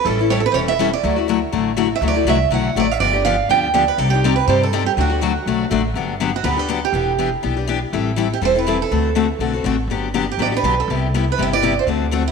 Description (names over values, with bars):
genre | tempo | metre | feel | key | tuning
acoustic string swing (jazz manouche) | 243 BPM | 4/4 | swing 55% on 8ths | G major | A4 = 440 Hz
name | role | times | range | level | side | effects
picked acoustic archtop guitar | melody | 0.0-12.3 s | E4 to G5 | -19 LUFS | right 9 dB | none
upright bass | bass | 0.0-12.3 s | E1 to G2 | -22 LUFS | equal | none
picked steel-string acoustic guitar | accompaniment | 0.1-12.2 s | C3 to D5 | -20 LUFS | left 9 dB | none
room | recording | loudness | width
moderate echo chamber reverb, RT60 2.6 s | 1960s-style stereo with parts hard left and right | -16 LUFS | side -5 dB against mid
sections
0.0-5.9 A section; 5.9-12.3 B section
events
none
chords
0.0 A7; 1.0 Dadd9; 3.0 G7; 4.0 Cmadd9; 5.0 D; 5.9 Gmaj7; 6.9 Em7; 7.9 Am7; 8.9 D7; 9.9 Gmaj7; 10.9 Cmaj7